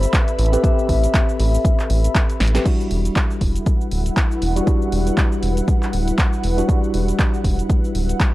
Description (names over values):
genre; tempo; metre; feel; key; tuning
deep house; 119 BPM; 4/4; swing 57% on 16ths; E minor; A4 = 440 Hz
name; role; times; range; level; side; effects
vibraphone with medium mallets; melody; 0.0-2.1 s; B4 to E5; -26 LUFS; left 4 dB; tape echo
tine electric piano; stabs; 0.0-8.3 s; G3 to B4; -25 LUFS; equal; overdrive, fast stereo tremolo, sidechain pumping, low-pass filter, tape echo
round analog bass; bass; 0.0-8.1 s; D1 to A1; -19 LUFS; equal; tube saturation, sidechain pumping
punchy analog drum machine; drums; 0.0-8.3 s; cabasa, crash cymbal, handclaps, hi-hat, snare drum; -26 LUFS; equal; none
ethereal airy pad; texture; 0.0-8.3 s; E4 to B5; -28 LUFS; equal; ensemble chorus, built-in reverb, sidechain pumping
electronic kick drum; drums; 0.1-8.3 s; none; -18 LUFS; equal; none
room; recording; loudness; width
little or no reverb; dry, gritty hardware recording, cassette tape; -16 LUFS; side -17 dB against mid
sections
0.0-2.7 A section; 2.7-8.3 B section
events
drop 0.0-2.7; drum fill 2.4; band accent 2.5; filter sweep on tine electric piano 2.7-8.3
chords
0.0 Am9; 2.7 Em9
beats
0.13 | 0.64 1.14 1.65 2.15 | 2.65 3.16 3.66 4.17 | 4.67 5.18 5.68 6.18 | 6.69 7.19 7.70 8.20